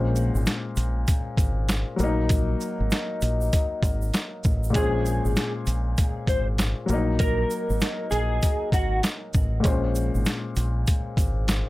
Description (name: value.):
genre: hip hop, boom-bap hip-hop.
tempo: 98 BPM.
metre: 4/4.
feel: swing 63% on 16ths.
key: Bb minor.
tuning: A4 = 440 Hz.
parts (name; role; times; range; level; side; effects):
dark upright piano; accompaniment; 0.0-11.7 s; Bb2 to C5; -28 LUFS; left 3 dB; cassette tape.
deep dub fingered electric bass; bass; 0.0-11.6 s; Ab1 to Bb1; -25 LUFS; equal; none.
boom bap sampler-style drum kit; drums; 0.2-11.7 s; hi-hat, kick drum, shaker, snare drum; -24 LUFS; equal; none.
egg shaker; percussion; 0.2-11.7 s; none; -41 LUFS; right 4 dB; none.
mellow electric guitar; melody; 4.8-9.0 s; Gb4 to C5; -29 LUFS; equal; ensemble chorus, digital delay.
room: little or no reverb.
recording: none.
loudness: -22 LUFS.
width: side -18 dB against mid.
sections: 0.0-11.7 A section.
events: none.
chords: 0.0 Bbm9; 2.0 Gb69; 4.7 Bbm9; 6.9 Gb69; 9.6 Bbm9.